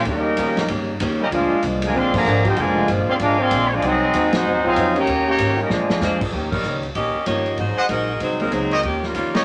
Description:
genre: jazz, big band swing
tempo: 192 BPM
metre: 4/4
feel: swing 62% on 8ths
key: Eb mixolydian from 6.3 s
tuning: A4 = 435 Hz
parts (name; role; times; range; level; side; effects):
- clear trumpet section; melody; 0.0-6.2 s; Bb3 to D6; -24 LUFS; equal; none
- warm trombone section; sustained chords; 0.0-6.3 s; C3 to F4; -33 LUFS; equal; none
- upright bass; bass; 0.0-9.4 s; F1 to Bb2; -29 LUFS; equal; none
- clear trombone section; second line; 0.1-6.2 s; D3 to G4; -24 LUFS; equal; none
- picked acoustic archtop guitar; accompaniment; 0.1-9.4 s; Ab2 to G4; -28 LUFS; equal; none
- swinging big-band drum kit; drums; 0.1-9.4 s; crash cymbal, hi-hat, kick drum, ride cymbal, snare drum; -30 LUFS; equal; none
- bright saxophone section; melody; 6.0-9.4 s; Eb3 to Eb5; -26 LUFS; equal; none
- clear baby grand piano; accompaniment; 7.3-9.4 s; F3 to Eb4; -28 LUFS; equal; none
- bright trumpet section; stabs; 7.8-9.4 s; G4 to Gb5; -22 LUFS; equal; none
room: wet studio reverb, RT60 0.5 s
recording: none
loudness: -20 LUFS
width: mono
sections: 0.0-6.3 A section; 6.3-9.4 B section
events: band accent 2.1, 4.3, 6.5; drum fill 5.7-6.0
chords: 0.0 Eb7; 1.3 Bb7; 3.8 Ab7; 5.1 Eb7; 5.7 Bb7; 6.3 Eb7; 7.6 Ab7; 8.8 Eb7

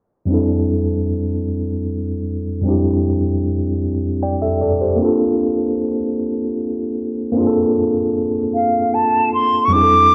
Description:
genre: R&B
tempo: 51 BPM (dotted quarters)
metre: 6/8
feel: straight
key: F major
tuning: A4 = 440 Hz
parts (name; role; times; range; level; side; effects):
- tine electric piano; accompaniment; 0.3-10.1 s; F2 to G5; -19 LUFS; equal; cassette tape
- silver concert flute; melody; 8.5-10.1 s; F5 to D6; -15 LUFS; equal; none
room: moderate spring reverb, RT60 1.2 s, studio ambience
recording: home recording on cassette, low-pass filter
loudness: -18 LUFS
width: mono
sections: 0.3-9.7 A section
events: filter sweep 0.3-9.7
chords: 0.3 Fmaj13; 5.0 Bbmaj7

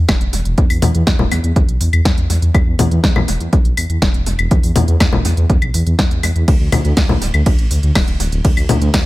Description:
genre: melodic techno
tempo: 122 BPM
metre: 4/4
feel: straight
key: unclear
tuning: A4 = 440 Hz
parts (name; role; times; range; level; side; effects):
- dark detuned saw bass; bass; 0.0-9.0 s; D1 to E2; -16 LUFS; equal; sidechain pumping
- deep house drum kit; drums; 0.1-9.0 s; claves, congas, hi-hat, ride cymbal, snare drum; -18 LUFS; left 2 dB; analog delay
- electronic kick drum; drums; 0.1-9.0 s; none; -15 LUFS; equal; none
room: little or no reverb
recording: echo-heavy mix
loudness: -12 LUFS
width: side -18 dB against mid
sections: 0.0-9.1 A section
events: none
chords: none

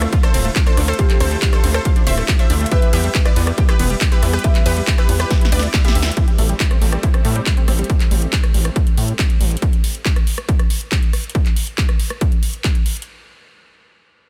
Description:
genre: uplifting trance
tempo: 139 BPM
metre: 4/4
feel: straight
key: A minor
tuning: A4 = 445 Hz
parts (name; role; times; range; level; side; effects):
- unison pluck; melody; 0.0-6.1 s; G4 to E5; -28 LUFS; equal; sidechain pumping, tape echo
- felt-muted upright piano; second line; 0.0-6.1 s; G4 to E5; -32 LUFS; equal; tape echo
- supersaw stab; second line; 0.0-6.1 s; B4 to E5; -33 LUFS; equal; none
- lush unison pad; sustained chords; 0.0-9.6 s; D3 to F4; -34 LUFS; equal; none
- tight sequenced synth; arpeggios; 0.0-7.9 s; G3 to E5; -31 LUFS; equal; chorus, sidechain pumping, tape echo
- gritty driven synth bass; bass; 0.0-9.6 s; D1 to A2; -20 LUFS; equal; sidechain pumping
- big-room dance drum kit; drums; 0.0-13.1 s; handclaps, hi-hat, ride cymbal, rim click, snare drum; -26 LUFS; equal; studio reverb
- electronic kick drum; drums; 0.1-12.7 s; none; -18 LUFS; equal; overdrive, studio reverb
room: little or no reverb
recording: dense, heavily limited modern master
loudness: -17 LUFS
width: mono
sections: 0.0-6.2 A section; 6.2-13.1 B section; 13.1-14.3 C section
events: drop 0.0-6.2; drum fill 5.3-6.2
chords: 0.0 Dm7; 2.7 Em; 6.2 Am7; 9.6 N.C.

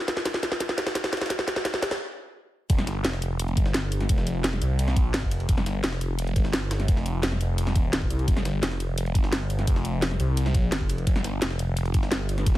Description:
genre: dark technical drum and bass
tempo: 172 BPM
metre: 4/4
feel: straight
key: unclear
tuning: A4 = 439 Hz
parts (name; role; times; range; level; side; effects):
- drum and bass drum kit; drums; 0.1-12.6 s; hi-hat, snare drum; -28 LUFS; equal; none
- jungle sampler-style drum kit; drums; 0.1-12.6 s; ride cymbal, snare drum; -37 LUFS; equal; high-pass filter on snare, high-pass filter on cymbals
- electronic kick drum; drums; 0.3-12.5 s; none; -23 LUFS; equal; high-pass filter on kick, high-pass filter on room
- phased detuned saw bass; bass; 2.7-12.6 s; Eb1 to C2; -26 LUFS; equal; phaser, tube saturation
room: little or no reverb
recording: heavily compressed radio sound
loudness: -23 LUFS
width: side -15 dB against mid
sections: 0.0-2.7 A section; 2.7-12.6 B section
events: build-up 0.0-2.7; drum fill 0.0-2.0; stop 2.0-2.7; drop 2.7-12.6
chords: none

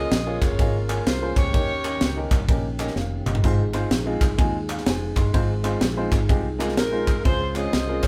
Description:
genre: uptempo gospel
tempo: 126 BPM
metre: 4/4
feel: swing 63% on 8ths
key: Ab major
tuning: A4 = 440 Hz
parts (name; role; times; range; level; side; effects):
- warm saxophone section; melody; 0.0-2.3, 6.8-8.1 s; Eb4 to Eb5; -30 LUFS; equal; none
- warm upright piano; accompaniment; 0.0-8.1 s; Ab2 to C6; -31 LUFS; equal; none
- percussive tonewheel organ; sustained chords; 0.0-8.1 s; Eb3 to Ab4; -34 LUFS; equal; chorus vibrato, slow rotary speaker
- fingered electric bass; bass; 0.0-8.1 s; F1 to Eb2; -30 LUFS; equal; none
- crisp fusion drum kit; drums; 0.1-8.1 s; kick drum, ride cymbal, snare drum, splash cymbal, toms; -25 LUFS; equal; none
- group handclap; percussion; 0.4-8.1 s; none; -39 LUFS; equal; none
room: light reverb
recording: band playing live in one room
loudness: -23 LUFS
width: mono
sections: 0.0-8.1 A section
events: drum fill 3.0-3.4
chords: 0.0 Db6; 1.5 Eb7; 3.4 Ab6; 5.3 Fm7/Ab; 7.3 Dbmaj7

